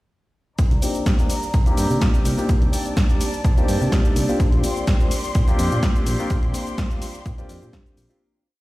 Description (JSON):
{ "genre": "filtered disco house", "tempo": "126 BPM", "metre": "4/4", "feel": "swing 53% on 16ths", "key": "C dorian", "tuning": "A4 = 439 Hz", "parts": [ { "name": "clear studio violin section", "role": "sustained chords", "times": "0.6-8.2 s", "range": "G4 to C6", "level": "-32 LUFS", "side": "left 1 dB", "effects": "sidechain pumping, low-pass filter" }, { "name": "fingered electric bass", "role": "bass", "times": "0.6-8.1 s", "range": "Bb1 to C3", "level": "-24 LUFS", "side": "equal", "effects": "sidechain pumping, low-pass filter" }, { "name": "electronic kick drum", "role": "drums", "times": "0.6-7.8 s", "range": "none", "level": "-20 LUFS", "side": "equal", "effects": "none" }, { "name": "punchy analog drum machine", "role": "drums", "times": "0.6-8.2 s", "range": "cabasa, hi-hat, snare drum", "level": "-29 LUFS", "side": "equal", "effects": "sidechain pumping on hats, sidechain pumping on perc" }, { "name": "dark concert grand piano", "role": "accompaniment", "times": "0.8-8.2 s", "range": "Bb3 to G4", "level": "-25 LUFS", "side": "left 1 dB", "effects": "phaser, sidechain pumping, low-pass filter" } ], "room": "little or no reverb", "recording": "played on a big sound system in a bare room, stone room reverb", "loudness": "-18 LUFS", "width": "side -19 dB against mid", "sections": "0.6-8.2 groove", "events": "filter sweep 0.6-8.2; fade-out 5.7-8.2", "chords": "0.6 Cm9; 4.4 Bb69", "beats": "| 0.59 1.07 1.54 2.02 | 2.50 2.97 3.45 3.92 | 4.40 4.88 5.35 5.83 | 6.30 6.78 7.26 7.73" }